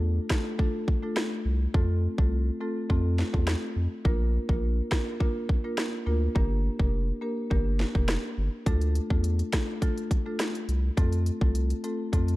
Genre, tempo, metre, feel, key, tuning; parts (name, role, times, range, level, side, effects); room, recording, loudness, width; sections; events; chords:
dancehall; 104 BPM; 4/4; straight; D minor; A4 = 441 Hz
marimba with medium mallets; accompaniment; 0.0-12.4 s; A3 to Bb4; -32 LUFS; equal; sidechain pumping
saturated sub bass; bass; 0.0-12.4 s; F1 to F2; -26 LUFS; equal
island pop drum kit; drums; 0.3-12.4 s; hi-hat, kick drum, rim click, snare drum; -27 LUFS; equal; overdrive
digital ambience; dark, warm production; -25 LUFS; side -18 dB against mid
0.0-12.4 A section
break 0.0-8.7
0.0 Dm; 1.7 F; 4.0 Bb; 6.4 Gm; 8.7 Dm; 11.0 F